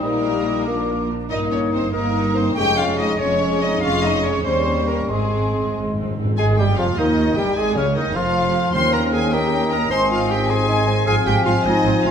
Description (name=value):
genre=classical, dramatic, fast romantic movement for symphony orchestra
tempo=92-104 BPM (dotted quarters)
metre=6/8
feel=straight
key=Ab major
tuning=A4 = 445 Hz
part: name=warm symphonic violin section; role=melody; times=0.0-12.1 s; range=Ab3 to C6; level=-27 LUFS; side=left 2 dB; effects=none
part: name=clear clarinet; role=second line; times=0.0-12.1 s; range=Db4 to G5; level=-26 LUFS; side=left 1 dB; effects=none
part: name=mellow hollow concert flute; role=second line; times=0.0-12.1 s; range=Db4 to Eb6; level=-28 LUFS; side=left 3 dB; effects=none
part: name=warm symphonic violin section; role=second line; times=0.0-12.1 s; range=Ab4 to C6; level=-26 LUFS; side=left 2 dB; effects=none
part: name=mellow bassoon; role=accompaniment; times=0.0-12.1 s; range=Db3 to Eb4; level=-26 LUFS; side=right 2 dB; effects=none
part: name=rich symphonic viola section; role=accompaniment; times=0.0-12.1 s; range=Db3 to G4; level=-29 LUFS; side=right 2 dB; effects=none
part: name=warm French horn section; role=sustained chords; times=0.0-12.1 s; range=Db3 to Eb4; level=-25 LUFS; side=left 4 dB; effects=none
part: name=warm studio cello section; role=bass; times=0.0-12.1 s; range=Db2 to Bb2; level=-25 LUFS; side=right 2 dB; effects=none
part: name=warm symphonic double bass section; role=bass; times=0.0-12.1 s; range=F1 to Eb2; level=-27 LUFS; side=right 4 dB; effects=none
part: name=timpani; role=percussion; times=5.1-6.3, 8.8-9.3 s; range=Ab2 to Eb3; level=-27 LUFS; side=left 1 dB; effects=none
part: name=warm oboe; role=second line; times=6.4-12.1 s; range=Db4 to Ab5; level=-28 LUFS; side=right 2 dB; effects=none
room=wet recital hall reverb, RT60 1.3 s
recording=none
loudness=-17 LUFS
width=side -7 dB against mid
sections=0.0-6.4 A section; 6.4-12.1 B section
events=timpani fill 5.1-6.4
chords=0.0 Eb/Bb; 0.7 Bb; 1.3 Eb/G; 2.6 Db/F; 4.4 Eb7; 5.1 Ab; 6.4 Ab5; 7.6 Db/Ab; 8.7 Eb7; 9.9 Ab; 11.1 Fm7/Ab